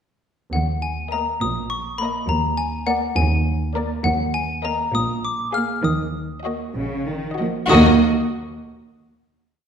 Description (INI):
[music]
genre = cinematic, playful, whimsical film cue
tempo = 67 BPM (dotted quarters)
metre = 6/8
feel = straight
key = Eb minor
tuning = A4 = 440 Hz
[part]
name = xylophone with wooden mallets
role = melody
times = 0.5-8.0 s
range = Gb5 to F6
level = -24 LUFS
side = left 4 dB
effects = none
[part]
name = clear studio cello section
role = bass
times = 0.5-8.0 s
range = Eb2 to F3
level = -26 LUFS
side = right 2 dB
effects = none
[part]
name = clear studio double bass section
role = bass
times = 0.5-8.0 s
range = Bb1 to Eb2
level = -24 LUFS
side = right 1 dB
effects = none
[part]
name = rich chamber violin section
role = melody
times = 1.1-8.0 s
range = D5 to F5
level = -29 LUFS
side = left 5 dB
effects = none
[part]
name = rich chamber violin section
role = second line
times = 1.1-8.0 s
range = Gb4 to Bb4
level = -26 LUFS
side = left 2 dB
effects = none
[part]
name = rich chamber viola section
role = accompaniment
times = 1.1-8.1 s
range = Bb3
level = -21 LUFS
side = right 2 dB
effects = none
[sound]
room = wet recital hall reverb, RT60 1.4 s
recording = none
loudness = -19 LUFS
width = side -7 dB against mid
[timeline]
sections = 0.5-7.7 A section; 7.7-9.5 final chord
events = none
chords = 0.5 Eb5; 2.3 Bb7/Eb; 4.9 Bb5; 5.8 Ebm; 7.7 Eb5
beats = | 0.54 1.42 | 2.30 3.17 | 4.05 4.94 | 5.84 6.76 | 7.69